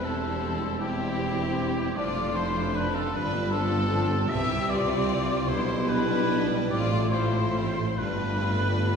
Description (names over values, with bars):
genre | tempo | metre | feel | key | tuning
classical | 45-53 BPM (dotted quarters) | 6/8 | rubato | C major | A4 = 441 Hz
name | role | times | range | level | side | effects
clear chamber violin section | melody | 0.0-9.0 s | C4 to G4 | -35 LUFS | left 1 dB | none
clear clarinet | second line | 0.0-9.0 s | C4 to G4 | -36 LUFS | right 4 dB | none
mellow hollow concert flute | second line | 0.0-9.0 s | G5 to E6 | -35 LUFS | left 3 dB | none
rich chamber violin section | second line | 0.0-9.0 s | G4 to E5 | -35 LUFS | left 1 dB | none
warm oboe | second line | 0.0-9.0 s | G4 to E5 | -33 LUFS | equal | none
rich chamber viola section | accompaniment | 0.0-9.0 s | E3 to A4 | -34 LUFS | left 1 dB | none
mellow French horn section | sustained chords | 0.0-9.0 s | G3 to G4 | -33 LUFS | left 4 dB | none
clear chamber double bass section | bass | 0.0-9.0 s | E1 to C2 | -32 LUFS | right 2 dB | none
mellow tuba | bass | 0.0-9.0 s | E1 to C2 | -33 LUFS | right 1 dB | none
warm chamber cello section | bass | 0.0-9.0 s | E2 to C3 | -33 LUFS | right 1 dB | none
room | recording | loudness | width
wet concert hall reverb, RT60 1.8 s | heard from further back in the room | -24 LUFS | side -6 dB against mid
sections
0.0-9.0 A section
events
none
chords
0.0 C/E; 2.0 Dm/F; 3.1 G7; 4.3 C; 5.5 G/B; 6.7 F/A; 8.0 G9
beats
0.81 | 1.97 3.14 | 4.30 5.49 | 6.71 7.98